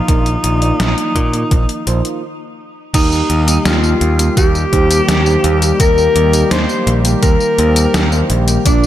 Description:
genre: synthwave.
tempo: 84 BPM.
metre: 4/4.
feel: straight.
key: Eb major.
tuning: A4 = 439 Hz.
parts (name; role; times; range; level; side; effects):
mellow alto saxophone; melody; 0.0-8.9 s; D4 to C5; -18 LUFS; left 1 dB; digital delay.
warm analog pad; sustained chords; 0.0-8.9 s; D3 to G4; -20 LUFS; left 2 dB; chorus, sidechain pumping.
mellow FM electric piano; stabs; 0.0-8.9 s; Bb3 to Eb5; -23 LUFS; right 5 dB; chorus.
modern bright picked electric bass; bass; 0.1-8.9 s; Bb1 to Bb2; -15 LUFS; equal; sidechain pumping.
detuned 8-bit digital drum machine; drums; 0.1-8.9 s; crash cymbal, hi-hat, snare drum, tambourine; -19 LUFS; equal; overdrive, gated reverb.
electronic kick drum; drums; 0.1-8.8 s; none; -14 LUFS; equal; overdrive.
soft synth bell; second line; 2.9-8.9 s; D4 to C5; -23 LUFS; equal; none.
room: light reverb.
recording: none.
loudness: -11 LUFS.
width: side -12 dB against mid.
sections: 0.0-2.9 A section; 2.9-8.9 B section.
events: stop 2.2-2.9.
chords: 0.0 Bbsus4; 2.9 Eb.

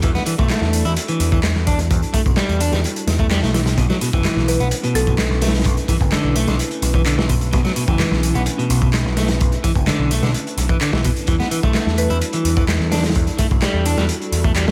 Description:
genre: breakbeat, breaks.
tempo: 128 BPM.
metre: 4/4.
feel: straight.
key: B minor.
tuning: A4 = 440 Hz.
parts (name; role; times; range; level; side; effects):
warbly tape-like pad; sustained chords; 0.0-14.7 s; G3 to B4; -31 LUFS; equal; chorus, built-in reverb, vintage 12-bit sampler grit, sidechain pumping.
electric guitar at the edge of break-up; riff; 0.0-14.7 s; B2 to E4; -24 LUFS; equal; vintage 12-bit sampler grit, tape echo.
overdriven picked electric bass; bass; 0.0-14.7 s; F#1 to E2; -22 LUFS; equal; none.
crunchy breakbeat drum kit; drums; 0.0-14.7 s; hi-hat, kick drum, snare drum; -22 LUFS; equal; tape echo.
garage drum kit; drums; 0.0-14.7 s; handclaps, hi-hat, tambourine; -30 LUFS; equal; overdrive.
buzzing marimba with medium mallets; melody; 4.5-5.6, 12.0-12.3 s; A4 to B4; -28 LUFS; equal; telephone sound, tape echo.
room: light reverb, studio reverb.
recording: echo-heavy mix.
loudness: -18 LUFS.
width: mono.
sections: 0.0-14.7 A section.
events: none.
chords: 0.0 Em11; 3.8 Bm11; 11.3 Em11.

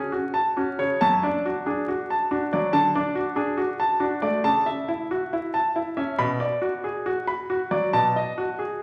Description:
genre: classical, baroque-style suite movement for grand piano.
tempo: 69 BPM.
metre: 4/4.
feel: rubato.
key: unclear.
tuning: A4 = 440 Hz.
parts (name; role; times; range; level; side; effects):
clear baby grand piano; solo; 0.0-8.8 s; F#2 to B5; -24 LUFS; equal; none.
room: wet recital hall reverb, RT60 1.6 s.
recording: vinyl crackle.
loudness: -24 LUFS.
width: mono.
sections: 0.0-8.8 A section.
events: none.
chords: 0.0 F#m; 1.0 D/F#; 2.7 D; 4.4 A/C#; 6.2 Bm; 7.9 B7.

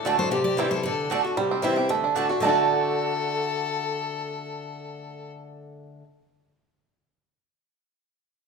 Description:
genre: bluegrass.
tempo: 228 BPM.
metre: 4/4.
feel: straight.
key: D mixolydian.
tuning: A4 = 439 Hz.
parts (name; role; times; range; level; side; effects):
picked steel-string acoustic guitar; melody; 0.0-6.0 s; C5 to D5; -32 LUFS; left 3 dB; none.
clear fiddle; second line; 0.0-5.3 s; G4 to A4; -31 LUFS; left 6 dB; none.
picked swing-style acoustic guitar; accompaniment; 0.0-6.0 s; A2 to F#4; -28 LUFS; left 2 dB; none.
mandolin; stabs; 0.0-6.0 s; A3 to A5; -28 LUFS; right 9 dB; none.
bluegrass banjo; melody; 0.1-6.0 s; G3 to A4; -27 LUFS; right 5 dB; none.
room: wet large studio reverb, RT60 1.3 s.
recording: minimal, uncompressed stereo recording.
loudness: -22 LUFS.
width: side -5 dB against mid.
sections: 0.0-1.4 A section; 1.4-2.4 B section; 2.4-4.5 C section.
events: none.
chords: 0.3 C; 0.8 D; 1.4 C; 1.9 D.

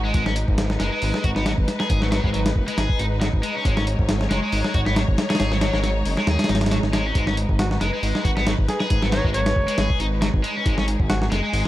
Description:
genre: breakbeat, breaks.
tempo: 137 BPM.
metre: 4/4.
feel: swing 55% on 16ths.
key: G# minor.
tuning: A4 = 442 Hz.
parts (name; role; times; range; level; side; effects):
rich studio string section; sustained chords; 0.0-11.7 s; G#3 to C#5; -28 LUFS; left 1 dB; sidechain pumping.
cranked stack guitar; riff; 0.0-11.7 s; F#3 to G#4; -27 LUFS; left 1 dB; overdrive, vintage 12-bit sampler grit, tape echo.
dark detuned saw bass; bass; 0.0-11.6 s; F#1 to D#2; -23 LUFS; equal; tube saturation.
dusty soul sampler-style drum kit; drums; 0.1-11.7 s; hi-hat, kick drum, snare drum; -22 LUFS; equal; small room ambience.
swell; sound effects; 6.5-7.2 s; none; -32 LUFS; left 1 dB; none.
clear alto saxophone; melody; 7.6-11.3 s; F#4 to C#5; -28 LUFS; equal; telephone sound, vintage 12-bit sampler grit, tape echo.
room: little or no reverb.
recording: vinyl crackle.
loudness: -19 LUFS.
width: side -15 dB against mid.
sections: 0.0-11.7 A section.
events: none.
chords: 0.0 G#m.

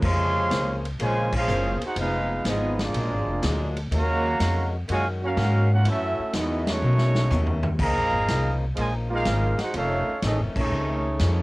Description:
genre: jazz, big band swing.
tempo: 124 BPM.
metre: 4/4.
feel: swing 69% on 8ths.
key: Bb minor.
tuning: A4 = 440 Hz.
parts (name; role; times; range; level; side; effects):
dark trumpet section; melody; 0.0-11.4 s; A3 to C6; -26 LUFS; right 1 dB; cassette tape.
clear trombone section; second line; 0.0-11.4 s; Bb2 to Gb4; -32 LUFS; right 2 dB; none.
picked swing-style acoustic guitar; accompaniment; 0.0-11.4 s; F2 to C5; -33 LUFS; left 2 dB; none.
upright bass; bass; 0.0-11.4 s; Eb1 to Ab2; -25 LUFS; equal; tube saturation.
swinging big-band drum kit; drums; 0.0-11.3 s; crash cymbal, hi-hat, kick drum, ride cymbal, snare drum, toms; -31 LUFS; equal; cassette tape.
room: moderate booth ambience, RT60 0.2 s.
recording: home recording on cassette.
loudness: -22 LUFS.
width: side -21 dB against mid.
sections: 0.0-11.4 A section.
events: band accent 1.2, 6.6, 10.5; drum fill 6.8-7.8.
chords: 0.0 Bbm9; 2.0 Fm7b5; 2.9 Bb7b13; 3.9 Ebm11; 5.9 Gbm7; 6.8 B9; 7.8 Db69; 9.7 F7alt.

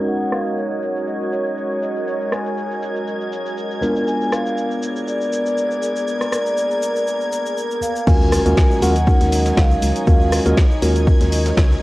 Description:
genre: deep house.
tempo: 120 BPM.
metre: 4/4.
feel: swing 54% on 16ths.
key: Eb minor.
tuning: A4 = 438 Hz.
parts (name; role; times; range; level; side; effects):
airy breathy pad; sustained chords; 0.0-11.8 s; Gb3 to Ab5; -27 LUFS; equal; chorus, sidechain pumping, cassette tape.
tine electric piano; stabs; 0.0-11.8 s; Ab3 to Bb4; -23 LUFS; equal; sidechain pumping, cassette tape, analog delay.
deep dark ambient pad; texture; 0.0-11.8 s; Eb4 to Bb5; -29 LUFS; equal; chorus, built-in reverb, sidechain pumping, cassette tape.
string machine, violins; texture; 0.0-11.8 s; Ab6; -34 LUFS; equal; ensemble chorus, cassette tape.
vibraphone with soft mallets; melody; 0.1-11.0 s; Db5 to Ab5; -24 LUFS; equal; analog delay.
deep house drum kit; drums; 0.1-11.8 s; crash cymbal, hi-hat, rim click, shaker, snare drum; -26 LUFS; equal; cassette tape.
organ-like FM bass; bass; 8.1-11.8 s; Db2 to Eb2; -19 LUFS; equal; sidechain pumping.
breakbeat sampler-style drum kit; drums; 8.1-11.8 s; hi-hat, ride cymbal, snare drum; -36 LUFS; equal; none.
electronic kick drum; drums; 8.1-11.7 s; none; -14 LUFS; equal; cassette tape.
impact; sound effects; 8.1-10.1 s; none; -27 LUFS; equal; none.
room: moderate spring reverb, RT60 1.7 s, digital ambience.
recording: home recording on cassette, low-pass filter.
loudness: -16 LUFS.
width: side -18 dB against mid.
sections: 0.0-8.1 A section; 8.1-11.8 B section.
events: filter sweep on analog synth pad 0.0-8.1; filter sweep 0.0-8.1; drop 8.1-11.8; impact 8.1-10.1.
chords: 0.0 Gb69; 3.8 Bb7b9; 8.1 Ebm11.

